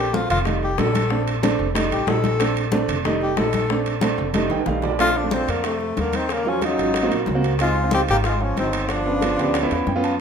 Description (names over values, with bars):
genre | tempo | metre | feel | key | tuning
Afro-Cuban jazz | 185 BPM | 4/4 | straight | Bb major | A4 = 441 Hz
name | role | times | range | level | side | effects
breathy tenor saxophone | melody | 0.0-9.9 s | A3 to A4 | -23 LUFS | left 3 dB | none
warm grand piano | accompaniment | 0.0-10.2 s | Gb3 to A5 | -23 LUFS | right 3 dB | none
upright bass | bass | 0.0-10.2 s | F1 to Gb2 | -26 LUFS | equal | none
bongos | percussion | 0.1-10.0 s | none | -32 LUFS | left 6 dB | none
congas | percussion | 0.1-10.2 s | none | -29 LUFS | left 4 dB | none
timbales | percussion | 0.1-10.2 s | none | -29 LUFS | right 7 dB | none
bright trombone | second line | 5.0-9.9 s | C3 to C4 | -28 LUFS | right 3 dB | none
room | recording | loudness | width
moderate large studio reverb, RT60 1.4 s | minimal, uncompressed stereo recording | -18 LUFS | side -7 dB against mid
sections
0.0-5.0 A section; 5.0-10.2 B section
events
tenor saxophone solo 0.0-5.0; drum fill 4.4-5.0; grand piano fill 4.4-5.0, 9.2-10.2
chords
0.5 F7; 1.1 Bbmaj7; 1.8 F7; 2.4 Bbmaj7; 3.1 F7; 3.7 Bbmaj7; 4.4 F7; 5.0 Bbmaj9; 6.3 Ebm9; 7.0 Ab7; 7.6 Dbmaj9; 8.9 G7#11